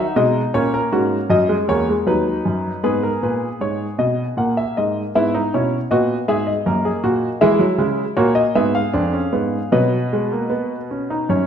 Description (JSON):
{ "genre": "classical, baroque-style 4-part fugue for grand piano", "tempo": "79 BPM", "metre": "3/4", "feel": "straight", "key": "unclear", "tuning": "A4 = 440 Hz", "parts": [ { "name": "clear grand piano", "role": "solo", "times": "0.0-11.5 s", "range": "D#2 to F#5", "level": "-16 LUFS", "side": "equal", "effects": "none" } ], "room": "wet recital hall reverb, RT60 1.4 s", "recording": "minimal, uncompressed stereo recording", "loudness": "-16 LUFS", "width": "side -8 dB against mid", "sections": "0.0-2.9 A section; 2.9-11.5 B section", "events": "none", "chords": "0.0 N.C.; 0.6 F#7; 2.1 B/D#; 2.9 G#m; 4.4 F#/A#; 5.2 E/G#; 6.7 D#m/F#; 7.4 C#m; 8.9 Fdim7; 9.7 F#sus4/B" }